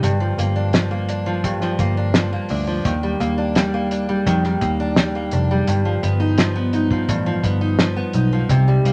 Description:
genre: indie pop, bedroom pop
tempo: 85 BPM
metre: 4/4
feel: straight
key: G minor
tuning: A4 = 440 Hz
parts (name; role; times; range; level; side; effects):
- picked steel-string acoustic guitar; accompaniment; 0.0-8.9 s; G2 to Eb4; -23 LUFS; equal; vibrato effect
- vintage muted picked electric bass; bass; 0.0-8.9 s; F1 to F2; -23 LUFS; equal; none
- cloth-damped thuddy drum kit; drums; 0.0-8.9 s; hi-hat, kick drum, snare drum; -22 LUFS; equal; none
room: moderate studio reverb, RT60 0.9 s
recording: none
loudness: -19 LUFS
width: mono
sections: 0.0-8.9 A section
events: none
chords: 0.0 Gm7; 2.9 Ebmaj7; 5.7 G7b13

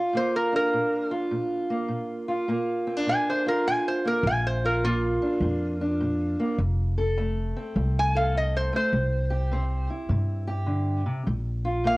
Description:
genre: acoustic country blues, solo or duo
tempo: 102 BPM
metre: 4/4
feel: swing 65% on 8ths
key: unclear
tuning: A4 = 440 Hz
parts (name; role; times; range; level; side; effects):
- metal-body resonator slide guitar; melody; 0.0-12.0 s; F4 to Ab5; -26 LUFS; equal; cassette tape
- fingerpicked steel-string acoustic guitar; accompaniment; 0.0-12.0 s; F2 to A4; -27 LUFS; equal; cassette tape
- upright bass; bass; 4.2-12.0 s; F1 to G2; -26 LUFS; equal; none
room: light reverb, small room ambience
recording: home recording on cassette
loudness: -23 LUFS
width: side -22 dB against mid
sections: 0.0-12.0 A section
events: none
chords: 0.0 Bb; 6.6 F; 8.9 C; 11.3 Bb5

